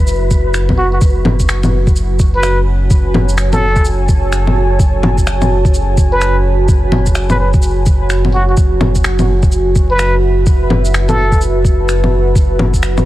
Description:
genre	future garage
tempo	127 BPM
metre	4/4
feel	swing 62% on 16ths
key	F# minor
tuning	A4 = 438 Hz
part	deep dark ambient pad	sustained chords	0.0-13.1 s	F#4 to A5	-18 LUFS	right 2 dB	chorus, built-in reverb, sidechain pumping
part	warm sub bass	bass	0.0-13.1 s	F#1	-15 LUFS	equal	tube saturation, sidechain pumping
part	wind-like tuned noise texture	texture	0.0-1.0 s	B4	-32 LUFS	right 5 dB	built-in reverb
part	electronic shaker, finger snaps and bongos	drums	0.1-13.0 s	none	-17 LUFS	left 1 dB	studio reverb, soft clipping on snare
part	electronic kick drum	drums	0.3-12.8 s	none	-12 LUFS	equal	studio reverb
part	trumpet with plunger mute	melody	0.8-11.4 s	F#4 to B4	-20 LUFS	equal	analog delay
room	digital ambience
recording	dense, heavily limited modern master, vinyl crackle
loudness	-10 LUFS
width	side -15 dB against mid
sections	0.0-1.0 A section; 1.0-13.1 A section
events	none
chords	0.0 Esus2/F#; 1.0 F#m7

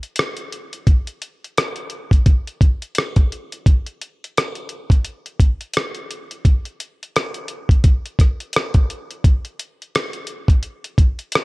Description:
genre	hip hop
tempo	86 BPM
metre	4/4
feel	swing 58% on 16ths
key	none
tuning	none
part	dusty soul sampler-style drum kit	drums	0.0-11.4 s	hi-hat, kick drum, rim click	-16 LUFS	equal	none
room	little or no reverb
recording	none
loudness	-17 LUFS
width	side -25 dB against mid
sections	0.0-11.4 A section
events	none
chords	none

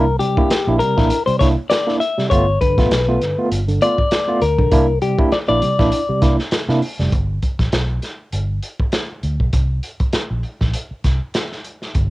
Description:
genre	funk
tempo	100 BPM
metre	4/4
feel	swing 56% on 16ths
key	unclear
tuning	A4 = 440 Hz
part	clean electric guitar	accompaniment	0.0-6.3 s	G4 to E5	-18 LUFS	left 3 dB	cassette tape
part	overdriven tine electric piano	stabs	0.0-7.1 s	G2 to F4	-19 LUFS	right 2 dB	fast tremolo, cassette tape
part	vintage muted fingered electric bass	bass	0.0-12.1 s	F1 to C3	-20 LUFS	equal	none
part	crunchy breakbeat drum kit	drums	0.2-12.1 s	hi-hat, kick drum, snare drum	-20 LUFS	equal	cassette tape
room	light reverb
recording	home recording on cassette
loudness	-15 LUFS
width	side -18 dB against mid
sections	0.0-7.1 A section; 7.1-12.1 B section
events	clean electric guitar solo 0.0-7.1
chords	0.0 C9; 2.3 G9; 4.7 C9; 7.1 G; 9.5 Bbsus2

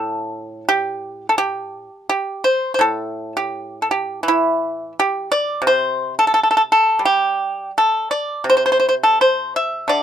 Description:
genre	chinese traditional, Chinese solo plucked strings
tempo	85 BPM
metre	2/4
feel	uneven beats, rubato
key	G zhi mode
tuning	A4 = 441 Hz
part	pipa	solo	0.0-10.0 s	A2 to E5	-16 LUFS	equal	none
room	little or no reverb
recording	close, detailed microphones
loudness	-16 LUFS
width	side -9 dB against mid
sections	0.0-2.8 A section; 2.8-10.0 A section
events	none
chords	none

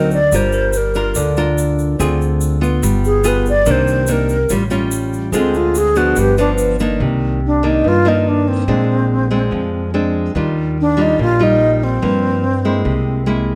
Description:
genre	bossa nova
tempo	144 BPM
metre	4/4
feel	straight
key	C minor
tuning	A4 = 439 Hz
part	breathy alto flute	melody	0.0-13.5 s	C4 to D5	-19 LUFS	equal	none
part	nylon-string guitar	accompaniment	0.0-13.6 s	G2 to Bb4	-20 LUFS	equal	none
part	upright bass	bass	0.0-13.6 s	G1 to G2	-22 LUFS	equal	none
part	tube shaker	percussion	0.1-7.0 s	none	-31 LUFS	equal	none
part	barky tine electric piano	accompaniment	0.5-6.2 s	Ab4 to D5	-27 LUFS	equal	none
room	moderate large studio reverb, RT60 1.4 s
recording	none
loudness	-16 LUFS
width	mono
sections	0.0-7.0 A section; 7.0-13.6 B section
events	alto flute solo 0.0-7.0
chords	0.3 Gm7; 2.0 Dm7b5; 2.8 G7b9; 3.7 Cm9; 4.5 A7b13; 5.3 Dm7b5; 6.2 G7; 7.0 Cm9; 8.7 Bb9; 10.3 Ebmaj9; 12.0 Abmaj13/G; 12.8 Caug7

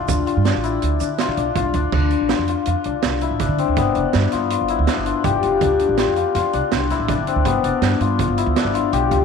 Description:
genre	progressive instrumental, band music in an uneven meter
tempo	163 BPM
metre	5/4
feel	straight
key	D dorian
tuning	A4 = 439 Hz
part	cimbalom	arpeggios	0.0-9.2 s	B3 to G4	-19 LUFS	left 8 dB	none
part	upright bass	bass	0.0-9.2 s	F1 to D3	-22 LUFS	right 2 dB	none
part	street-band drum kit	drums	0.1-9.2 s	crash cymbal, hi-hat, kick drum, snare drum	-24 LUFS	right 11 dB	none
part	tube shaker	percussion	0.1-1.3 s	none	-35 LUFS	right 17 dB	none
room	moderate echo chamber reverb, RT60 1.8 s, small room ambience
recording	1960s-style stereo with parts hard left and right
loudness	-17 LUFS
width	side -6 dB against mid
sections	0.0-1.9 A section; 1.9-9.2 B section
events	none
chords	0.1 Dm; 1.9 Dm7; 3.8 G7; 5.6 Dm7; 7.5 G7

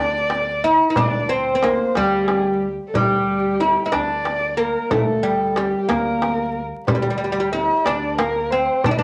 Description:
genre	Arabic maqam ensemble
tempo	61 BPM (dotted quarters)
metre	6/8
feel	straight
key	D maqam bayati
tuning	A4 = 441 Hz
part	oud	melody	0.0-9.0 s	G3 to E4-50c	-22 LUFS	equal	none
part	dark violin	second line	0.0-9.0 s	G4 to E5-47c	-26 LUFS	equal	none
part	upright bass	bass	0.0-9.0 s	D2	-38 LUFS	equal	none
part	darbuka	percussion	0.3-9.0 s	none	-27 LUFS	equal	none
part	frame drum	percussion	0.3-9.0 s	none	-32 LUFS	equal	none
room	moderate studio reverb, RT60 0.6 s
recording	vinyl crackle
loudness	-20 LUFS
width	mono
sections	0.0-9.0 A section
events	none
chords	none

